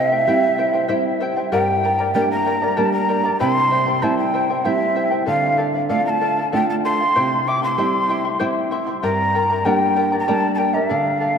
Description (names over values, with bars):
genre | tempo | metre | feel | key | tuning
andean folk | 96 BPM | 3/4 | straight | unclear | A4 = 438 Hz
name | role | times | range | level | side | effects
breathy mellow large quena | melody | 0.0-11.4 s | E5 to D6 | -19 LUFS | equal | none
charango | accompaniment | 0.0-11.4 s | E4 to C6 | -23 LUFS | left 3 dB | none
flamenco guitar | accompaniment | 0.0-11.4 s | G2 to F4 | -22 LUFS | right 3 dB | none
room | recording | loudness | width
wet cathedral reverb, RT60 5.3 s | in a vast, echoing space | -16 LUFS | side -7 dB against mid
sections
0.0-11.4 A section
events
none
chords
0.0 C; 1.5 Gm; 3.4 C; 5.3 Dm; 7.2 C; 9.0 Gm